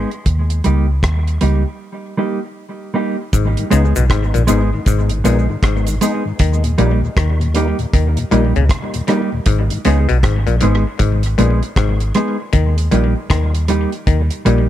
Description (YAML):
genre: dub reggae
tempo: 78 BPM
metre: 4/4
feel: swing 63% on 16ths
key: G# harmonic minor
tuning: A4 = 440 Hz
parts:
  - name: mellow electric guitar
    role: accompaniment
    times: 0.0-14.7 s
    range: G3 to G#4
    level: -20 LUFS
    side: right 2 dB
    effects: tape echo
  - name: vintage muted fingered electric bass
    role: bass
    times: 0.0-14.7 s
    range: G#1 to D#2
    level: -15 LUFS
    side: equal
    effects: none
  - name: deep reggae drum kit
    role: drums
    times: 0.1-14.7 s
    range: hi-hat, kick drum, rim click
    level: -19 LUFS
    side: equal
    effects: none
  - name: muted clav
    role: riff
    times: 3.3-14.6 s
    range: G#2 to D#3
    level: -23 LUFS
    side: left 9 dB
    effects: overdrive, tape echo
  - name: cabasa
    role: percussion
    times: 3.3-6.2 s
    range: none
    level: -31 LUFS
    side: right 5 dB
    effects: tape echo
  - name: mellow tonewheel organ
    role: accompaniment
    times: 3.6-9.8 s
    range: D#2 to D#4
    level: -24 LUFS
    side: left 2 dB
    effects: chorus vibrato, tape echo
room: studio reverb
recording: none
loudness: -13 LUFS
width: side -12 dB against mid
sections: 0.0-3.3 A section; 3.3-14.7 B section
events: break 1.8-3.3; part muted 6.4-14.7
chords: 0.3 D#; 3.3 G#m; 6.4 D#; 9.5 G#m; 12.5 D#